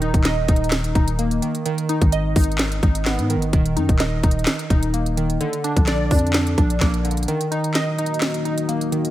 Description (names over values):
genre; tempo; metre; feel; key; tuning
hip hop, trap; 128 BPM; 4/4; half-time; Eb harmonic minor; A4 = 440 Hz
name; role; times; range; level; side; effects
glassy digital keys; accompaniment; 0.0-9.1 s; D3 to Eb5; -22 LUFS; right 1 dB; chorus
growling 808-style bass; bass; 0.0-7.3 s; Eb1 to Ab2; -22 LUFS; equal; none
trap drum kit; drums; 0.0-9.1 s; handclaps, hi-hat, kick drum, snare drum; -20 LUFS; equal; none
deep dark ambient pad; sustained chords; 7.9-9.1 s; Eb3 to Gb4; -27 LUFS; left 1 dB; chorus, built-in reverb
room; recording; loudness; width
little or no reverb; none; -18 LUFS; side -14 dB against mid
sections
0.0-9.1 A section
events
break 7.3-9.1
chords
0.0 Eb5; 1.7 Abm; 3.5 Eb5; 5.4 Bb; 7.3 Ebm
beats
0.25 0.72 1.19 | 1.66 2.12 2.59 3.06 | 3.53 4.00 4.47 4.94 | 5.41 5.88 6.34 6.81 | 7.28 7.75 8.22 8.69